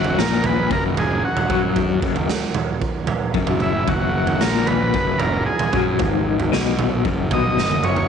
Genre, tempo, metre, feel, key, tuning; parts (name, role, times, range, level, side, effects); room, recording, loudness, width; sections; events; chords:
psychedelic rock; 114 BPM; 4/4; straight; F# major; A4 = 440 Hz
combo organ; melody; 0.0-8.1 s; E4 to D#5; -24 LUFS; right 1 dB; tape echo
electric guitar through a small old amp; riff; 0.0-8.1 s; F#2 to F#3; -23 LUFS; left 13 dB; tremolo
fuzz fingered electric bass; bass; 0.0-8.1 s; F#1 to F#2; -24 LUFS; equal; overdrive
hand-pumped harmonium; drone; 0.0-8.1 s; F#2 to F#3; -32 LUFS; left 2 dB
raw garage drum kit; drums; 0.0-8.1 s; kick drum, snare drum, toms; -22 LUFS; right 5 dB
moderate echo chamber reverb, RT60 2.3 s; 1960s-style stereo, nothing above 10.5 kHz; -17 LUFS; side -7 dB against mid
0.0-8.1 A section
drum fill 7.6-8.1
0.0 F#sus2